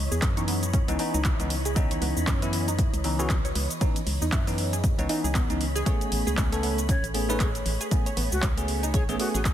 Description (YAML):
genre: deep house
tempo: 117 BPM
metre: 4/4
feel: swing 58% on 16ths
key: C# minor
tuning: A4 = 439 Hz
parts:
  - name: soft string machine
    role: sustained chords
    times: 0.0-9.5 s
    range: E3 to B5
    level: -36 LUFS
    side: equal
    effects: phaser, ensemble chorus, sidechain pumping
  - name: organ-like FM bass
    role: bass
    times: 0.0-9.5 s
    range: A1 to F#2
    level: -29 LUFS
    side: equal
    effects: sidechain pumping
  - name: analog pluck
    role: arpeggios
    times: 0.1-9.4 s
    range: B3 to C#5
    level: -35 LUFS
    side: right 2 dB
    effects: chorus, phaser, sidechain pumping, ping-pong delay
  - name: deep house drum kit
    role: drums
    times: 0.1-9.5 s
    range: handclaps, hi-hat, shaker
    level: -32 LUFS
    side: equal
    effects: overdrive, small room ambience
  - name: electronic kick drum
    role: drums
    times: 0.2-9.5 s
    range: none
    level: -26 LUFS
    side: equal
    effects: small room ambience
  - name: bell-like tine electric piano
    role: stabs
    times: 0.4-9.4 s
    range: E3 to B4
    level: -30 LUFS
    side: equal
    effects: phaser, sidechain pumping, tape echo
  - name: breathy mellow silver concert flute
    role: melody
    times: 6.9-9.4 s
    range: F#4 to C#5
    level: -35 LUFS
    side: left 1 dB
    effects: tape echo
room: digital ambience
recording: dense, heavily limited modern master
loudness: -23 LUFS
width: side -11 dB against mid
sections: 0.0-9.5 A section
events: none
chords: 0.0 C#m9; 5.9 Amaj9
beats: 0.22 0.73 1.25 | 1.76 2.27 2.79 3.30 | 3.81 4.32 4.84 5.35 | 5.86 6.38 6.89 7.40 | 7.91 8.43 8.94 9.45